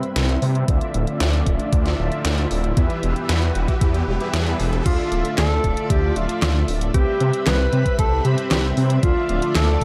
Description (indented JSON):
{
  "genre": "synthwave",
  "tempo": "115 BPM",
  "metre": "4/4",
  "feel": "straight",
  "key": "D dorian",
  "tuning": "A4 = 441 Hz",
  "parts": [
    { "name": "string machine, full ensemble", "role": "sustained chords", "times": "0.0-9.8 s", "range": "G3 to B5", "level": "-31 LUFS", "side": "equal", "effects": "phaser, ensemble chorus, sidechain pumping" },
    { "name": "mellow synth brass", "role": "stabs", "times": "0.0-9.8 s", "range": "D3 to E5", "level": "-30 LUFS", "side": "equal", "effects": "chorus, cassette tape, tape echo" },
    { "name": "pop drum kit", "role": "drums", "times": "0.0-9.8 s", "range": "crash cymbal, handclaps, hi-hat, snare drum", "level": "-28 LUFS", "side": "equal", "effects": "overdrive, high-pass filter on snare, high-pass filter on hats, high-pass filter on toms, high-pass filter on cymbals, high-pass filter on room" },
    { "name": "riser", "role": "sound effects", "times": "0.9-4.9 s", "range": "none", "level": "-35 LUFS", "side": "equal", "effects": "none" },
    { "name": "detuned saw bass", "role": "bass", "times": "0.2-9.8 s", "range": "D1 to C3", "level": "-23 LUFS", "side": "equal", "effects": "chorus, sidechain pumping" },
    { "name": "electronic kick drum", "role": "drums", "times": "0.7-9.8 s", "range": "none", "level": "-22 LUFS", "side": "equal", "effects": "none" },
    { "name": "breathy alto saxophone", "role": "melody", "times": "4.9-9.8 s", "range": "F4 to B4", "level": "-26 LUFS", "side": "equal", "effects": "tape echo" }
  ],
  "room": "light reverb",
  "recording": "dark, warm production",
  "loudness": "-20 LUFS",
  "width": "mono",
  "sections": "0.0-4.9 A section; 4.9-9.8 B section",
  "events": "filter sweep on string machine 0.0-4.9; filter sweep on analog polysynth 0.0-4.9; riser 0.9-4.9",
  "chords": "0.0 Cmaj7; 0.7 Dmadd9; 2.8 Em; 4.9 Dmadd9; 6.9 Cmaj7; 9.0 Dmadd9"
}